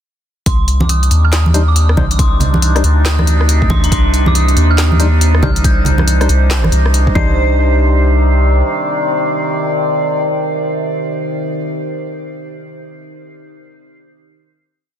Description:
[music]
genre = deep dubstep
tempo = 139 BPM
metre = 4/4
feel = swing 62% on 16ths, half-time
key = C minor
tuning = A4 = 440 Hz
[part]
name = dark detuned synth bell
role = melody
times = 0.5-11.7 s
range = Bb5 to C7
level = -24 LUFS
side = right 2 dB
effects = chorus, phaser, dub echo
[part]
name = overtone-sweeping drone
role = sustained chords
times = 1.1-11.6 s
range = C3 to D5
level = -19 LUFS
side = equal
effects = chorus, built-in reverb
[part]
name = soft dub sub bass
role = bass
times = 0.5-8.6 s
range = C2 to Eb2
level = -12 LUFS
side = equal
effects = none
[part]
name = deep house drum kit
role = drums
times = 0.5-7.0 s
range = handclaps, hi-hat, rim click, snare drum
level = -20 LUFS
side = left 1 dB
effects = none
[part]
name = electronic kick drum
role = drums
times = 0.5-7.3 s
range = none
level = -15 LUFS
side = equal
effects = none
[part]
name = congas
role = percussion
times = 0.8-7.3 s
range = none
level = -20 LUFS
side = right 2 dB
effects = none
[part]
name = percussive organ stab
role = stabs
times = 1.5-11.7 s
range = G3 to C5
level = -23 LUFS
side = left 4 dB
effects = wide subtle chorus, dub echo
[part]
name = backwards swelling texture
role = texture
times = 4.6-7.4 s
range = C5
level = -26 LUFS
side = right 7 dB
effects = built-in reverb
[sound]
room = little or no reverb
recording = dense, heavily limited modern master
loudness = -11 LUFS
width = side -10 dB against mid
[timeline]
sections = 0.5-7.4 drop; 7.4-10.8 final hit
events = drop 0.5-7.4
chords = 0.5 Cmadd9

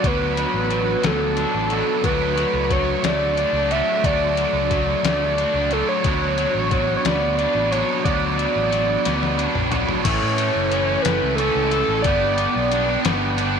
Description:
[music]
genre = indie rock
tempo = 60 BPM (dotted quarters)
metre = 6/8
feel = straight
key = D major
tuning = A4 = 436 Hz
[part]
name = overdriven synth lead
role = melody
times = 0.0-13.0 s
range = A4 to E5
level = -22 LUFS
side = equal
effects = slapback echo
[part]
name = crunchy overdriven guitar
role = riff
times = 0.0-13.6 s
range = E3 to A4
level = -25 LUFS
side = left 14 dB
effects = none
[part]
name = fuzz guitar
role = riff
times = 0.0-13.6 s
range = E3 to A4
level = -24 LUFS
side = right 12 dB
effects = distortion, ensemble chorus, slapback echo
[part]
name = fingered electric bass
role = bass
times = 0.0-13.6 s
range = F#1 to A2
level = -26 LUFS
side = equal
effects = none
[part]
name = trip hop sampler-style drum kit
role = drums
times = 0.0-13.5 s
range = crash cymbal, hi-hat, kick drum, snare drum, toms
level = -26 LUFS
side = left 4 dB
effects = none
[sound]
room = light reverb, digital ambience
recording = 1960s-style stereo with parts hard left and right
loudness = -18 LUFS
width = side -6 dB against mid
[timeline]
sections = 0.0-10.1 A section; 10.1-13.6 B section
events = drum fill 9.1-10.1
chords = 0.0 Bm; 2.0 D; 6.0 Bm; 10.1 A; 12.1 G

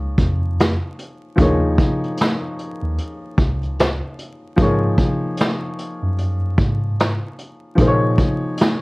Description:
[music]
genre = lo-fi hip hop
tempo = 75 BPM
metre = 4/4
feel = swing 60% on 16ths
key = unclear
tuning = A4 = 439 Hz
[part]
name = dark upright piano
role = accompaniment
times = 0.0-8.8 s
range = F3 to Db5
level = -22 LUFS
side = left 1 dB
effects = cassette tape
[part]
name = mellow tine electric piano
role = bass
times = 0.0-8.2 s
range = Db2 to Bb2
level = -21 LUFS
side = equal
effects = medium stereo tremolo
[part]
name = vintage brush drum kit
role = drums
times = 0.2-8.8 s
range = hi-hat, kick drum, snare drum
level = -18 LUFS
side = equal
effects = none
[sound]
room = light reverb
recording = worn, warbling old tape, cassette tape, vinyl crackle, warbly pitch drift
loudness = -17 LUFS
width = side -25 dB against mid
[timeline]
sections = 0.0-8.8 A section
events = none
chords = 0.0 Eb5; 4.6 Ab7sus4; 7.8 Bbm7

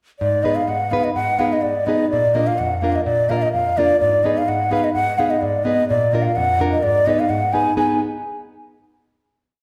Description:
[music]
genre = balkan folk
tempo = 127 BPM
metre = 2/4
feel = swing 54% on 16ths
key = Ab dorian sharp4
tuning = A4 = 440 Hz
[part]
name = breathy mellow bansuri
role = melody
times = 0.2-8.0 s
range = D5 to Ab5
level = -20 LUFS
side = equal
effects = none
[part]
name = nylon-string guitar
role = accompaniment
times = 0.2-8.0 s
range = F2 to Cb5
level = -24 LUFS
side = equal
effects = none
[sound]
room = wet recital hall reverb, RT60 1.5 s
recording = recorded in a church or concert hall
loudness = -19 LUFS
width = mono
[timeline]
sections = 0.2-7.8 A section; 7.8-8.7 final chord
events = none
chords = 0.2 Abm; 2.1 Bb; 4.0 Abm; 5.9 Bb; 6.8 Abm

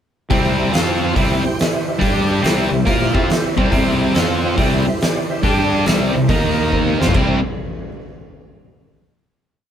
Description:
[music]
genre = blues rock power trio and southern rock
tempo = 140 BPM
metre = 4/4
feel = swing 66% on 8ths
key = C mixolydian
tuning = A4 = 440 Hz
[part]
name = tonewheel organ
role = sustained chords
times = 0.3-7.4 s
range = Bb3 to G5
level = -23 LUFS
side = right 2 dB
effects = slow rotary speaker, overdrive, chorus vibrato
[part]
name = sludgy distorted guitar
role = riff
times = 0.3-7.4 s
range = C3 to Bb4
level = -18 LUFS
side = equal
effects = overdrive
[part]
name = fuzz fingered electric bass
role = bass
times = 0.3-7.4 s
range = C2 to Bb2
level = -22 LUFS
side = equal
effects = overdrive
[part]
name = oversized low-tuned drum kit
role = drums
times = 0.3-7.3 s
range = crash cymbal, hi-hat, kick drum, snare drum, toms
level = -19 LUFS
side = equal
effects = none
[sound]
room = moderate studio reverb, RT60 0.9 s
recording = band playing live in one room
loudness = -14 LUFS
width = side -9 dB against mid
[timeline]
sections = 0.3-7.2 riff; 7.2-8.9 final chord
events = drum fill 6.7-7.2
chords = 0.3 C; 0.7 F5; 1.1 C; 2.0 G5; 2.4 C; 4.1 F5; 4.6 C; 5.4 G5; 5.9 C; 6.3 Eb5; 6.9 C

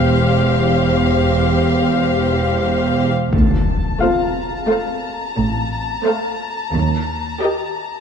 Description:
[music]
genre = cinematic, suspense film score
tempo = 88 BPM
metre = 5/4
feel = straight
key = D phrygian from 3.3 s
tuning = A4 = 440 Hz
[part]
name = rich studio violin section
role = melody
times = 0.0-7.9 s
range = Eb5 to F5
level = -23 LUFS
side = left 5 dB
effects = none
[part]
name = dark studio violin section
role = second line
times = 0.0-7.9 s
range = G4 to C5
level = -22 LUFS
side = left 3 dB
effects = none
[part]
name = rich studio cello section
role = bass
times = 0.0-7.3 s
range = D2 to A2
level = -20 LUFS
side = right 3 dB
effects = none
[part]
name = rich studio double bass section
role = bass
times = 0.0-7.3 s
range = E1 to Eb2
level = -21 LUFS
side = right 2 dB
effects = none
[part]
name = felt-muted upright piano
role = texture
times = 0.0-6.8 s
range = F4 to F5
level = -24 LUFS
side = left 3 dB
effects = none
[part]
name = impact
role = sound effects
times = 3.3-6.7 s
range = none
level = -20 LUFS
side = left 2 dB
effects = none
[part]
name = rich studio violin section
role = texture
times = 3.3-8.0 s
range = A5 to Bb5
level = -26 LUFS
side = left 5 dB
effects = none
[part]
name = rich studio viola section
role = accompaniment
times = 4.0-7.9 s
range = A3 to G4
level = -21 LUFS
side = right 2 dB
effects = none
[sound]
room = moderate scoring stage reverb, RT60 1.6 s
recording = dark, warm production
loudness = -15 LUFS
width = side -7 dB against mid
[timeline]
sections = 0.0-3.3 A section; 3.3-8.0 B section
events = impact 3.3-6.7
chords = 0.0 Fadd9/E; 3.3 Dm7; 6.7 Eb

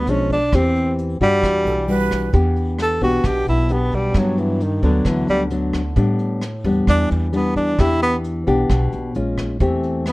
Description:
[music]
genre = bossa nova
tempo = 132 BPM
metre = 4/4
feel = straight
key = E minor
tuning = A4 = 440 Hz
[part]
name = breathy tenor saxophone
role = melody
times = 0.0-10.1 s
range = D3 to A4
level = -20 LUFS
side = equal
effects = none
[part]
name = nylon-string guitar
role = accompaniment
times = 0.0-10.1 s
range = G2 to G4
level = -20 LUFS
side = left 2 dB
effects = none
[part]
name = upright bass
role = bass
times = 0.0-10.1 s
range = A#1 to A2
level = -22 LUFS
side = equal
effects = none
[part]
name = vintage brush drum kit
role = drums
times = 0.1-10.1 s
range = hi-hat, kick drum, rim click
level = -25 LUFS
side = equal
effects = none
[part]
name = breathy jazz flute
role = second line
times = 1.7-2.3 s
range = A4 to B4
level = -24 LUFS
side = right 6 dB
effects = none
[sound]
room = little or no reverb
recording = close, detailed microphones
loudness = -16 LUFS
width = side -20 dB against mid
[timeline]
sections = 0.0-2.3 A section; 2.3-10.1 B section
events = tenor saxophone solo 2.3-10.1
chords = 0.1 Bdim7; 0.5 C/E; 1.4 Em9; 2.3 Em7; 4.2 Gmaj7; 6.0 A9sus4; 7.8 Em7; 9.1 A#m7; 9.6 Am7/E

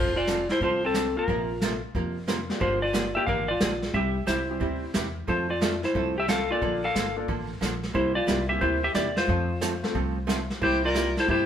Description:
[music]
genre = country, western swing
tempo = 180 BPM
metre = 4/4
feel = swing 65% on 8ths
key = F major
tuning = A4 = 441 Hz
[part]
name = clean lap steel guitar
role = melody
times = 0.0-11.5 s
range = C4 to F5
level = -26 LUFS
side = left 1 dB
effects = none
[part]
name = archtop guitar, miked and amplified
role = accompaniment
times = 0.0-11.5 s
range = C3 to Bb4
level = -32 LUFS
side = right 3 dB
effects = none
[part]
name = upright bass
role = bass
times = 0.0-11.5 s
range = F1 to G2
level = -32 LUFS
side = equal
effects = none
[part]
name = vintage brush drum kit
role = drums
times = 0.3-11.5 s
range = brushed snare drum, hi-hat, kick drum, snare drum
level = -31 LUFS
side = equal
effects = none
[part]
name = bright upright piano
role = accompaniment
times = 1.2-9.9 s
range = G3 to Bb4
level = -36 LUFS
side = left 3 dB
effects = none
[part]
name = clear fiddle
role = second line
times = 10.6-11.5 s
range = G4 to Bb4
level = -31 LUFS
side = right 1 dB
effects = none
[sound]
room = wet studio reverb, RT60 0.9 s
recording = band playing live in one room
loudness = -24 LUFS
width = side -9 dB against mid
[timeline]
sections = 0.0-11.5 A section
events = none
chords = 0.0 F6; 1.3 Bbsus2; 2.6 Gm7; 3.9 C; 5.3 F; 6.6 Bbmaj7; 8.0 C7; 9.3 F; 10.6 C7

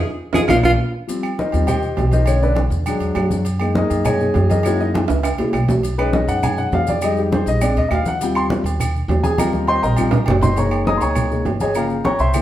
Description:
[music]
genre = Afro-Cuban jazz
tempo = 202 BPM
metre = 4/4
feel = straight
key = Eb major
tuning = A4 = 440 Hz
[part]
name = clear tenor saxophone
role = melody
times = 0.3-0.7 s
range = F4 to Ab4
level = -19 LUFS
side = right 1 dB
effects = none
[part]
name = warm concert grand piano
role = accompaniment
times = 0.3-12.4 s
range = Db3 to Eb6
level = -20 LUFS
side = left 2 dB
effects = none
[part]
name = upright bass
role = bass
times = 0.3-12.4 s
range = Gb1 to F#2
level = -20 LUFS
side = equal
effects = none
[part]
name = claves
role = percussion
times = 0.3-12.4 s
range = none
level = -33 LUFS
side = right 3 dB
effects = none
[part]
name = congas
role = percussion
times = 0.3-12.4 s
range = none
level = -23 LUFS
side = equal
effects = none
[part]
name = timbales and agogo bells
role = percussion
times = 0.3-12.4 s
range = none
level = -25 LUFS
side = right 5 dB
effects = none
[part]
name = maracas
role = percussion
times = 0.4-12.4 s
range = none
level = -38 LUFS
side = left 4 dB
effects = none
[sound]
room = wet large studio reverb, RT60 0.9 s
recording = band playing live in one room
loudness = -16 LUFS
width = side -12 dB against mid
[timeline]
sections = 0.0-1.1 A section; 1.1-10.6 A section; 10.6-12.4 A section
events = band accent 0.0-1.1; tenor saxophone solo 0.0-1.1; grand piano solo 1.1-12.4; drum fill 5.1-5.8, 9.4-10.6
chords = 0.5 Bb; 1.1 Eb6; 2.3 Bm7; 2.9 E9; 3.5 Gb69; 4.6 Gb7; 5.8 B69; 7.0 Fm7; 7.6 Bb7; 8.2 Eb6; 10.6 Gb69; 11.8 Gm7b5

